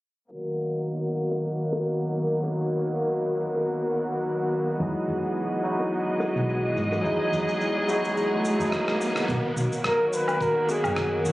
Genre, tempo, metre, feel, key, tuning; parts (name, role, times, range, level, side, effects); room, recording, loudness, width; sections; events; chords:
sunset chillout; 107 BPM; 4/4; swing 55% on 16ths; B major; A4 = 440 Hz
warm chamber string section; sustained chords; 0.3-11.3 s; D#3 to D#5; -26 LUFS; equal; low-pass filter
electronic cabasa, rim click and woodblock; drums; 0.3-11.3 s; -32 LUFS; equal
bongos; percussion; 1.3-10.8 s; -34 LUFS; equal
barky tine electric piano; accompaniment; 4.8-9.3 s; F#3 to G#4; -28 LUFS; equal; auto-pan, tape echo
hollow-body short-scale fingered electric bass; bass; 4.8-11.3 s; F#1 to G#2; -29 LUFS; equal
riser; sound effects; 6.1-9.3 s; -33 LUFS; right 1 dB
electronic kick drum; drums; 9.3-11.1 s; -36 LUFS; equal
mellow flugelhorn; melody; 9.9-11.3 s; F#4 to C#5; -24 LUFS; equal
light reverb, digital ambience; recorded on a phone in the room, studio reverb, compression, low-pass filter; -23 LUFS; side -17 dB against mid
0.3-9.3 A section; 9.3-11.3 B section
filter sweep on string section 0.3-9.3; filter sweep 0.3-9.3; riser 6.1-9.3; drum fill 8.7-9.3
0.3 Bmaj7; 4.8 Emaj9; 9.3 Bmaj7